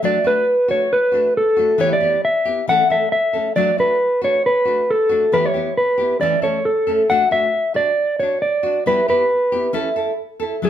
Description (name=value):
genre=highlife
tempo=136 BPM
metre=4/4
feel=swing 53% on 16ths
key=D major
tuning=A4 = 440 Hz
part: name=mellow electric guitar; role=melody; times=0.0-10.7 s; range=A4 to F#5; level=-16 LUFS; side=equal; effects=none
part: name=nylon-string guitar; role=accompaniment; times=0.0-10.7 s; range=E3 to A4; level=-24 LUFS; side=left 2 dB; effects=none
room=moderate large studio reverb, RT60 0.8 s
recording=band playing live in one room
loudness=-15 LUFS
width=side -10 dB against mid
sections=0.0-10.6 A section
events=none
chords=0.0 D; 1.8 Em; 2.7 A; 3.6 D; 5.3 Em; 6.2 A; 7.1 D; 8.9 Em; 9.7 A